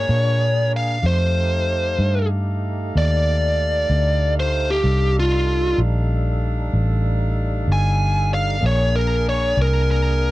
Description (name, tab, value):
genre	slow blues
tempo	63 BPM (dotted quarters)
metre	12/8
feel	straight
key	unclear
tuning	A4 = 440 Hz
part	biting lead guitar	melody	0.0-10.3 s	F4 to Ab5	-21 LUFS	equal	overdrive
part	tonewheel organ	sustained chords	0.0-10.3 s	G3 to A4	-30 LUFS	right 1 dB	overdrive, chorus vibrato, slow rotary speaker
part	warm horn section	sustained chords	0.0-10.3 s	D4 to Ab5	-33 LUFS	equal	none
part	vintage muted fingered electric bass	bass	0.0-10.3 s	G1 to Bb2	-19 LUFS	equal	none
room	little or no reverb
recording	dry, close 1970s-style studio recording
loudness	-17 LUFS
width	side -17 dB against mid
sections	0.0-10.3 A section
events	none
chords	0.0 Bb7; 1.0 F9; 8.6 Bb9